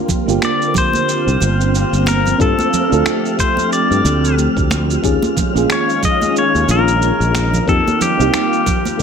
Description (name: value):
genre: sunset chillout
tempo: 91 BPM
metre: 4/4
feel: swing 58% on 16ths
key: unclear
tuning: A4 = 440 Hz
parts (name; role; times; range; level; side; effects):
- mellow FM electric piano; accompaniment; 0.0-9.0 s; A3 to A4; -21 LUFS; moving between left 7 dB and right 8 dB; chorus, auto-pan, tape echo
- soft string machine; sustained chords; 0.0-9.0 s; D3 to G4; -20 LUFS; equal; phaser, ensemble chorus
- wind-like tuned noise texture; texture; 0.4-9.0 s; F6; -29 LUFS; equal; built-in reverb
- electronic cabasa and finger snaps; drums; 0.1-9.0 s; none; -23 LUFS; right 3 dB; none
- electronic kick drum; drums; 0.1-9.0 s; none; -20 LUFS; equal; none
- congas; percussion; 0.1-9.0 s; none; -25 LUFS; right 4 dB; none
- sustaining fretless electric bass; bass; 0.3-8.3 s; G1 to G2; -17 LUFS; equal; none
- pedal steel guitar; melody; 0.4-9.0 s; G4 to Eb5; -18 LUFS; left 3 dB; tape echo
room: moderate plate reverb, RT60 1.5 s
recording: none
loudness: -13 LUFS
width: side -7 dB against mid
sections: 0.0-9.0 A section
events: none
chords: 0.0 C9sus4; 2.4 G9sus4; 5.0 Eb9sus4; 7.7 F9sus4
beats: 0.42 1.08 1.74 | 2.40 3.06 3.72 4.38 | 5.04 5.70 6.36 7.01 | 7.67 8.33 8.99